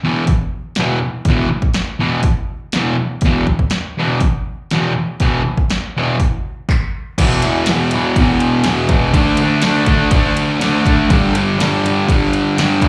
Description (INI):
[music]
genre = garage rock duo or trio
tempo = 122 BPM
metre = 4/4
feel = straight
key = unclear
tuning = A4 = 440 Hz
[part]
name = fuzz guitar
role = riff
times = 0.0-12.9 s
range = E2 to D4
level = -17 LUFS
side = equal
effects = distortion, slapback echo
[part]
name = punchy analog drum machine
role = drums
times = 0.3-12.9 s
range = crash cymbal, handclaps, hi-hat, kick drum, ride cymbal, snare drum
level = -20 LUFS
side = equal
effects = none
[sound]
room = light reverb, digital ambience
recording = live gig heard through the venue's PA, club reverb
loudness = -16 LUFS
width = mono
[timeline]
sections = 0.0-7.2 A section; 7.2-12.9 B section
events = none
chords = 0.0 E5; 9.1 D5; 11.1 G5